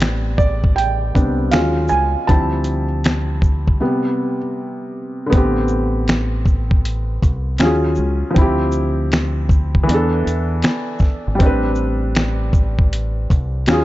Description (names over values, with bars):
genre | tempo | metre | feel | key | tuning
lo-fi hip hop | 79 BPM | 4/4 | swing 66% on 16ths | A minor | A4 = 439 Hz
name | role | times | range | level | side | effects
felt-muted upright piano | accompaniment | 0.0-13.8 s | C3 to A5 | -20 LUFS | equal | low-pass filter
deep dub fingered electric bass | bass | 0.0-13.8 s | G#1 to E2 | -20 LUFS | equal | none
dusty soul sampler-style drum kit | drums | 0.0-13.8 s | finger snaps, hi-hat, kick drum, shaker, snare drum | -16 LUFS | equal | none
finger snaps | percussion | 0.0-13.8 s | none | -36 LUFS | left 4 dB | none
room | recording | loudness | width
little or no reverb | dark, warm production, nothing above 7.7 kHz | -15 LUFS | side -16 dB against mid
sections
0.0-5.3 A section; 5.3-13.8 B section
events
felt piano solo 0.0-5.3; break 3.8-5.3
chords
0.0 Am11; 1.5 D#m11; 2.3 Dm11; 3.8 Gadd11/C; 5.3 Am11; 7.6 D#m11; 8.4 Dm11; 9.9 E7sus4; 11.4 Am11